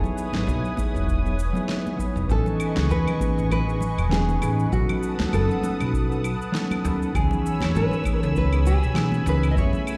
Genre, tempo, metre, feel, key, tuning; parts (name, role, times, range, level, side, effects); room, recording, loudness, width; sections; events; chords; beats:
sunset chillout; 99 BPM; 4/4; swing 56% on 16ths; A lydian; A4 = 440 Hz
nylon-string guitar; melody; 0.0-10.0 s; F#4 to D#5; -32 LUFS; equal; tape echo
mellow electric guitar; accompaniment; 0.0-10.0 s; E3 to G#5; -30 LUFS; equal; tape echo
lush unison pad; sustained chords; 0.0-10.0 s; A3 to E6; -35 LUFS; equal; chorus, phaser
congas; percussion; 0.0-9.8 s; -35 LUFS; equal
electronic shaker, snare drum and claves; drums; 0.1-10.0 s; -35 LUFS; equal; overdrive
upright bass; bass; 0.3-9.7 s; E1 to E2; -26 LUFS; equal; tube saturation
electronic kick drum; drums; 0.8-9.7 s; -29 LUFS; equal
light reverb, small room ambience; played on a big sound system in a bare room, large studio reverb; -23 LUFS; mono
0.0-2.3 A section; 2.3-10.0 B section
0.0 Emaj7; 2.3 Amaj9#11; 4.7 B7; 7.1 C#m7
0.48 1.09 1.69 | 2.30 2.90 3.51 4.12 | 4.72 5.33 5.93 6.54 | 7.15 7.75 8.36 8.96 | 9.57